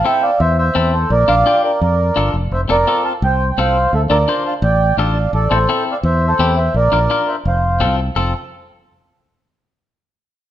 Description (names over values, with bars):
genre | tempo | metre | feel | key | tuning
latin, cumbia | 170 BPM | 4/4 | straight | F major | A4 = 440 Hz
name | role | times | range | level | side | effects
mellow accordion | melody | 0.0-8.3 s | A4 to A5 | -16 LUFS | right 2 dB | none
clean electric guitar | accompaniment | 0.0-8.3 s | C4 to C5 | -21 LUFS | left 5 dB | none
fingered electric bass | bass | 0.4-8.3 s | F1 to F2 | -17 LUFS | equal | none
room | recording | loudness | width
moderate large studio reverb, RT60 1.3 s | minimal, uncompressed stereo recording | -13 LUFS | side -12 dB against mid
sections
0.0-8.2 A section; 8.2-9.6 B section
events
none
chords
0.0 Am; 1.1 Bb; 2.5 F; 3.9 Dm; 5.3 Am; 6.8 Bb; 7.5 F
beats
0.05 0.41 0.76 | 1.11 1.46 1.81 2.17 | 2.52 2.87 3.23 3.58 | 3.93 4.28 4.64 4.99 | 5.34 5.69 6.05 6.40 | 6.75 7.10 7.46 7.81 | 8.16